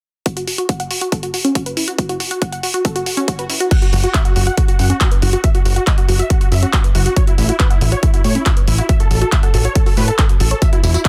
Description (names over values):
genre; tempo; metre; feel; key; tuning
uplifting trance; 139 BPM; 4/4; straight; unclear; A4 = 440 Hz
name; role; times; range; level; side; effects
unison pluck; arpeggios; 0.3-11.1 s; C#4 to F#5; -25 LUFS; equal; sidechain pumping, digital delay
electronic kick drum; drums; 0.3-11.1 s; none; -18 LUFS; equal; high-pass filter on kick
punchy analog drum machine; drums; 0.3-11.1 s; crash cymbal, handclaps, hi-hat, tambourine; -24 LUFS; equal; none
swell; sound effects; 3.0-3.7 s; none; -32 LUFS; equal; none
big supersaw lead; melody; 3.7-11.1 s; E4 to F#5; -26 LUFS; equal; sidechain pumping, low-pass filter, digital delay
fat analog bass; bass; 3.9-11.0 s; E1 to A2; -18 LUFS; equal; sidechain pumping
room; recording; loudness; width
little or no reverb; dense, heavily limited modern master; -16 LUFS; mono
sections
0.3-3.7 A section; 3.7-11.1 B section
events
filter sweep on synth pluck 0.3-3.7, 3.7-11.1; swell 3.0-3.7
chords
0.3 N.C.; 7.2 A5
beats
| 0.26 0.69 1.12 1.55 | 1.99 2.42 2.85 3.28 | 3.71 4.14 4.58 5.01 | 5.44 5.87 6.30 6.73 | 7.17 7.60 8.03 8.46 | 8.89 9.32 9.76 10.19 | 10.62 11.05